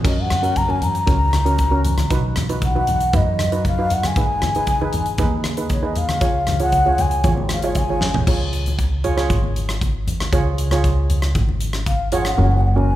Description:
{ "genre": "calypso", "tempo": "117 BPM", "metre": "4/4", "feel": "straight", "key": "unclear", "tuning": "A4 = 440 Hz", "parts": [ { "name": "steel pan", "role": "accompaniment", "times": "0.0-13.0 s", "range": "C#4 to C#5", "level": "-25 LUFS", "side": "right 3 dB", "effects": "none" }, { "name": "upright bass", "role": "bass", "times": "0.0-13.0 s", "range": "F#1 to F#2", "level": "-21 LUFS", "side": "equal", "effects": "none" }, { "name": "modern studio drum kit", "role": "drums", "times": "0.0-12.4 s", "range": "crash cymbal, hi-hat, kick drum, rim click, snare drum, toms", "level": "-22 LUFS", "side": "equal", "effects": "none" }, { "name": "breathy bass bansuri", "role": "melody", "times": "0.1-8.3, 11.9-13.0 s", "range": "C#5 to A#5", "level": "-22 LUFS", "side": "left 1 dB", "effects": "none" }, { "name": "congas", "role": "percussion", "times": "0.3-12.9 s", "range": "none", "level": "-26 LUFS", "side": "left 1 dB", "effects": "none" } ], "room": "moderate recital hall reverb, RT60 1.7 s", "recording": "recorded in a church or concert hall", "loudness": "-16 LUFS", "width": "side -14 dB against mid", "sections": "0.0-8.3 A section; 8.3-12.4 B section", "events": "bansuri solo 0.0-8.3; drum fill 7.9-8.3", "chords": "0.1 F#; 2.1 B; 4.2 G#m; 6.2 C#; 12.4 F#", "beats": "| 0.06 0.57 1.08 1.60 | 2.11 2.63 3.14 3.66 | 4.17 4.68 5.20 5.71 | 6.23 6.74 7.25 7.77 | 8.28 8.80 9.31 9.82 | 10.34 10.85 11.36 11.87 | 12.39 12.90" }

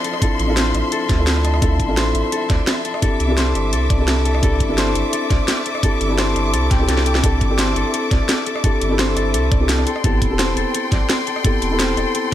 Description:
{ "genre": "liquid drum and bass", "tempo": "171 BPM", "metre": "4/4", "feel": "straight", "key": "unclear", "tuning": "A4 = 440 Hz", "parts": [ { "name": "dark grand piano", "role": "accompaniment", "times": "0.0-12.3 s", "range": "B3 to A4", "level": "-22 LUFS", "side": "left 1 dB", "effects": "tape echo" }, { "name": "clear studio string section", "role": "sustained chords", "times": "0.0-12.3 s", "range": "F3 to D6", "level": "-26 LUFS", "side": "left 2 dB", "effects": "sidechain pumping" }, { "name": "concert harp", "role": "arpeggios", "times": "0.0-12.3 s", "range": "G4 to A5", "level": "-26 LUFS", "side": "left 4 dB", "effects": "tape echo" }, { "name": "drum and bass drum kit", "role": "drums", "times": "0.0-12.2 s", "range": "hi-hat, rim click, snare drum", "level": "-22 LUFS", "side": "equal", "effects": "none" }, { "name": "electronic kick drum", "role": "drums", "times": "0.2-11.5 s", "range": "none", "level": "-18 LUFS", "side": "right 1 dB", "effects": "none" }, { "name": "sub bass with octave", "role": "bass", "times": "0.4-12.1 s", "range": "E1 to D2", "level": "-20 LUFS", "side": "equal", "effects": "none" } ], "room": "digital ambience", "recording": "none", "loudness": "-15 LUFS", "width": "side -12 dB against mid", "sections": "0.0-12.3 A section", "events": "drum fill 6.9-7.2", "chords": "0.0 Dm9; 3.0 C69; 9.9 Am9", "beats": "| 0.22 0.57 0.92 1.27 | 1.62 1.97 2.32 2.67 | 3.03 3.38 3.73 4.08 | 4.43 4.78 5.13 5.48 | 5.83 6.18 6.53 6.88 | 7.24 7.59 7.94 8.29 | 8.64 8.99 9.34 9.69 | 10.04 10.39 10.74 11.10 | 11.45 11.80 12.15" }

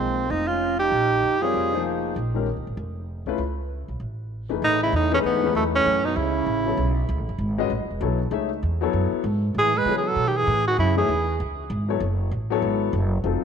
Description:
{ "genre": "jazz", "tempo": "195 BPM", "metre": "4/4", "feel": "swing 60% on 8ths", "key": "Bb dorian, F# dorian from 4.6 s", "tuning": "A4 = 438 Hz", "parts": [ { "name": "breathy tenor saxophone", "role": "melody", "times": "0.0-1.9, 4.6-7.0, 9.6-11.4 s", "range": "A3 to B4", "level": "-22 LUFS", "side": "right 1 dB", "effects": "tape echo" }, { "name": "breathy trombone", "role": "second line", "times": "0.0-1.8, 4.6-7.0, 9.6-11.4 s", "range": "F#2 to F4", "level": "-29 LUFS", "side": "right 10 dB", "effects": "none" }, { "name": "warm concert grand piano", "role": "accompaniment", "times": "0.0-13.4 s", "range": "Eb3 to E5", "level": "-27 LUFS", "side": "left 9 dB", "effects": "none" }, { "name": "upright bass", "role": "bass", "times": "0.0-13.4 s", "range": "E1 to C#3", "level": "-26 LUFS", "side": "right 1 dB", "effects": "none" } ], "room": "moderate echo chamber reverb, RT60 2.2 s", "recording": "1960s-style stereo with parts hard left and right", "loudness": "-21 LUFS", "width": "side -7 dB against mid", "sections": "0.0-4.6 A section; 4.6-13.4 B section", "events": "none", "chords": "0.0 Bbm11; 3.4 Db7(#5, no3); 4.6 F#m9", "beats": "0.30 0.61 | 0.92 1.23 1.54 1.85 | 2.16 2.47 2.77 3.08 | 3.39 3.70 4.01 4.32 | 4.63 4.93 5.24 5.55 | 5.86 6.16 6.47 6.78 | 7.09 7.39 7.70 8.01 | 8.32 8.62 8.93 9.24 | 9.55 9.86 10.16 10.47 | 10.78 11.09 11.40 11.70 | 12.01 12.32 12.63 12.93 | 13.24" }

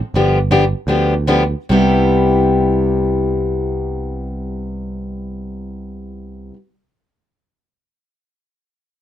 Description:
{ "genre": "acoustic string swing (jazz manouche)", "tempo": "134-175 BPM", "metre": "4/4", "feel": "swing 60% on 8ths", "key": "C major", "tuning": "A4 = 440 Hz", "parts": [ { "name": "picked electric bass", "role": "bass", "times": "0.1-6.5 s", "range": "G1 to D2", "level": "-20 LUFS", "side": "right 1 dB", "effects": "none" }, { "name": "picked steel-string acoustic guitar", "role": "accompaniment", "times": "0.2-6.6 s", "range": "C3 to G4", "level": "-17 LUFS", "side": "left 1 dB", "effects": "none" } ], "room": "light reverb", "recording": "close, detailed microphones", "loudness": "-14 LUFS", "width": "side -11 dB against mid", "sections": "0.0-1.7 A section; 1.7-5.3 B section", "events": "slowing down 0.0-1.7", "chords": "0.1 G7; 1.7 Cmaj7", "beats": "| 0.14 0.50 0.88 1.28 | 1.71 2.15 2.60 3.05 | 3.50 3.94 4.39 4.84" }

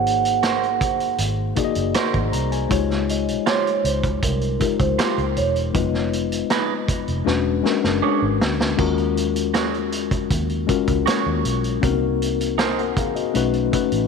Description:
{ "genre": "lush 1970s-style soul", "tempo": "79 BPM", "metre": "4/4", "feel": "straight", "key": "unclear", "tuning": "A4 = 440 Hz", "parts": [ { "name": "vibraphone with soft mallets", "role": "melody", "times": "0.0-7.2 s", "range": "Bb4 to Gb5", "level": "-24 LUFS", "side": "right 7 dB", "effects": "tape echo" }, { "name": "tine electric piano", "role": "accompaniment", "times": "0.0-14.1 s", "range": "Gb3 to Bb5", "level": "-22 LUFS", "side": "left 12 dB", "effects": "overdrive, medium stereo tremolo" }, { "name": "vintage muted fingered electric bass", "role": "bass", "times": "0.0-14.1 s", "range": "E1 to Eb2", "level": "-25 LUFS", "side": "right 2 dB", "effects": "none" }, { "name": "vintage drum kit", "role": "drums", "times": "0.1-14.1 s", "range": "hi-hat, kick drum, snare drum, splash cymbal", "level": "-25 LUFS", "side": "right 2 dB", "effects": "none" }, { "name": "electric guitar through a small old amp", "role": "riff", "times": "0.4-12.8 s", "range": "D4 to C#5", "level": "-27 LUFS", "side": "right 14 dB", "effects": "spring reverb" } ], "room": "light reverb, studio reverb", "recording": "1960s-style stereo with parts hard left and right", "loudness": "-18 LUFS", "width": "side -5 dB against mid", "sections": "0.0-14.1 A section", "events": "drum fill 7.3-8.8", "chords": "0.0 Ab9; 2.7 Dbmaj9#11; 5.7 Fm7b5; 7.3 E13; 8.8 Ebm11; 11.8 Cm7b5; 13.3 B9", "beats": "0.43 1.19 1.95 | 2.71 3.47 4.23 4.99 | 5.75 6.51 7.26 8.03 | 8.79 9.54 10.30 11.06 | 11.83 12.59 13.35" }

